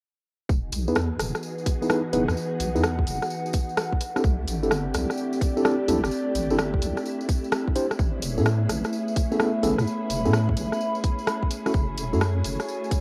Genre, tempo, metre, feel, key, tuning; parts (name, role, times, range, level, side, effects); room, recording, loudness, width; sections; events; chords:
UK garage, two-step garage; 128 BPM; 4/4; swing 66% on 16ths; E major; A4 = 440 Hz
soft string machine; sustained chords; 0.5-13.0 s; A3 to G#4; -38 LUFS; equal; ensemble chorus, sidechain pumping
deep soft wobble bass; bass; 0.5-12.6 s; E1 to A2; -29 LUFS; equal; chorus
electronic kick drum; drums; 0.5-13.0 s; -26 LUFS; equal; cassette tape
tambourine; percussion; 0.5-13.0 s; -42 LUFS; equal
warbly tape-like pad; texture; 1.1-13.0 s; E3 to B5; -32 LUFS; equal; chorus, built-in reverb, sidechain pumping
garage drum kit; drums; 0.7-13.0 s; hi-hat, rim click; -31 LUFS; equal; cassette tape
mellow tine electric piano; stabs; 0.9-12.2 s; A3 to C5; -29 LUFS; equal; low-pass filter, tape echo
moderate spring reverb, RT60 1.8 s, digital ambience; home recording on cassette; -25 LUFS; mono
0.5-13.0 A section
filter sweep on tine electric piano 0.5-13.0
0.5 Emaj7; 4.0 C69; 8.0 Amaj9; 11.5 F#m7